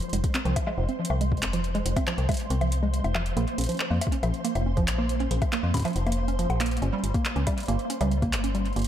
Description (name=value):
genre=IDM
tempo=139 BPM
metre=4/4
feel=straight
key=F minor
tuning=A4 = 440 Hz
part: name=electro analog drum machine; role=drums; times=0.0-8.9 s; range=bongos, handclaps, hi-hat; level=-32 LUFS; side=left 2 dB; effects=tape echo
part: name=flickering grainy texture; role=texture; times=0.0-8.9 s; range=C5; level=-37 LUFS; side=right 2 dB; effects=built-in reverb, wide subtle chorus, sidechain pumping
part: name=warbly dusty pluck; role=arpeggios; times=0.1-8.8 s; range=F3 to Db4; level=-29 LUFS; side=right 2 dB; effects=chorus, ping-pong delay
part: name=metallic FM bass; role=bass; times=0.1-8.8 s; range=F1 to F2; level=-26 LUFS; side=equal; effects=none
part: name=electronic kick drum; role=drums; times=0.2-8.3 s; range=none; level=-28 LUFS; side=equal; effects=overdrive
room=moderate plate reverb, RT60 1.8 s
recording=dreamy mix soaked in reverb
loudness=-24 LUFS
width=side -10 dB against mid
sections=0.0-8.9 A section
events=none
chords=0.0 Fm; 3.4 Bb5; 6.8 Gdim